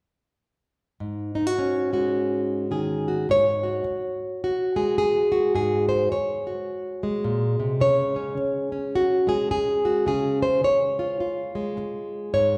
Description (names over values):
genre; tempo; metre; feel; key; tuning
folk, solo fingerstyle acoustic guitar; 106 BPM; 4/4; swing 60% on 8ths; Db major; A4 = 440 Hz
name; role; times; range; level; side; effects
nylon-string guitar; solo; 1.0-12.6 s; Ab2 to Db5; -24 LUFS; equal; none
room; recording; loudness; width
wet recital hall reverb, RT60 1.6 s; heard from further back in the room; -24 LUFS; mono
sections
1.0-3.3 A section; 3.3-12.6 B section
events
none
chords
1.0 Ab7sus4; 7.8 Db